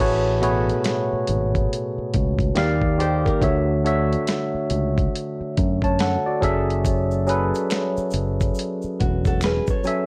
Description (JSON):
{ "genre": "R&B, neo-soul", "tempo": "70 BPM", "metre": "4/4", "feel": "swing 62% on 16ths", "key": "A major", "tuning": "A4 = 439 Hz", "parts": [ { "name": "barky tine electric piano", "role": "accompaniment", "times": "0.0-10.1 s", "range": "A2 to A5", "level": "-25 LUFS", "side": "equal", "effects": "overdrive, subtle chorus" }, { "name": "fretless electric bass", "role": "bass", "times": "0.0-9.6 s", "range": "E1 to F#2", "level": "-26 LUFS", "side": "equal", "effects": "tube saturation" }, { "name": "dusty soul sampler-style drum kit", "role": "drums", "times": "0.0-10.1 s", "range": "hi-hat, kick drum, snare drum", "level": "-27 LUFS", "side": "equal", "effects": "none" }, { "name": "nylon-string guitar", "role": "second line", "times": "2.6-3.7, 9.0-10.1 s", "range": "F#4 to D5", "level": "-30 LUFS", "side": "equal", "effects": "none" }, { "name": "egg shaker and finger snaps", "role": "percussion", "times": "6.8-10.1 s", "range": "none", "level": "-41 LUFS", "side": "equal", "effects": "none" } ], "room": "moderate studio reverb, RT60 0.7 s", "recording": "worn, warbling old tape, cassette tape, warbly pitch drift", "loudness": "-22 LUFS", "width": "mono", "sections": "0.0-10.1 A section", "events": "none", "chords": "0.0 Amaj13; 2.6 D#maj7; 3.4 Dmaj7; 6.4 F#m7" }